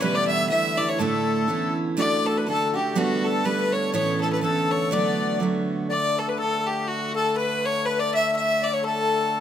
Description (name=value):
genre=celtic folk, Celtic polka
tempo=123 BPM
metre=2/4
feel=swing 57% on 8ths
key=D major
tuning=A4 = 440 Hz
part: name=bright fiddle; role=melody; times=0.0-9.4 s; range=F#4 to E5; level=-25 LUFS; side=left 1 dB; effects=none
part: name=accordion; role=second line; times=0.0-9.4 s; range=F#4 to E5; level=-27 LUFS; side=left 4 dB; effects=light tremolo tuning
part: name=picked steel-string acoustic guitar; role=accompaniment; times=0.0-6.4 s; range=E2 to A4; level=-25 LUFS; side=right 4 dB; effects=none
part: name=accordion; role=drone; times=0.0-9.4 s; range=D3 to A3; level=-33 LUFS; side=left 2 dB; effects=none
room=moderate recital hall reverb, RT60 1.9 s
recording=close, detailed microphones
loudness=-21 LUFS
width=side -9 dB against mid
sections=0.0-5.9 A section; 5.9-9.4 A section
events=none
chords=0.0 Em; 1.0 Asus4; 1.5 Aadd9; 2.0 D; 3.0 Gadd9; 3.9 Aadd9; 4.9 D6; 5.9 D5